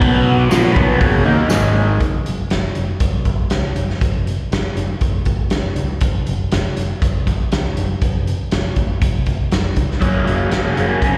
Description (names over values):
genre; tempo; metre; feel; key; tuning
garage rock duo or trio; 120 BPM; 4/4; straight; F# major; A4 = 440 Hz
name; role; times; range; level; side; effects
combo organ; sustained chords; 0.0-1.9 s; F#4 to G#5; -29 LUFS; equal; none
crunchy overdriven guitar; riff; 0.0-2.0, 10.0-11.2 s; F#2 to D#4; -18 LUFS; equal; phaser, slapback echo
growling picked electric bass; bass; 0.0-11.2 s; F#1 to D#2; -23 LUFS; equal; overdrive
raw garage drum kit; drums; 0.0-11.1 s; hi-hat, kick drum, snare drum; -21 LUFS; equal; none
tambourine; percussion; 0.5-1.6 s; none; -35 LUFS; equal; none
room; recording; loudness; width
light reverb, small room ambience; live gig heard through the venue's PA, recital hall reverb; -18 LUFS; mono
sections
0.0-2.0 A section; 2.0-11.2 B section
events
none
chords
0.0 B5; 0.5 F#; 1.5 G#5; 2.0 F#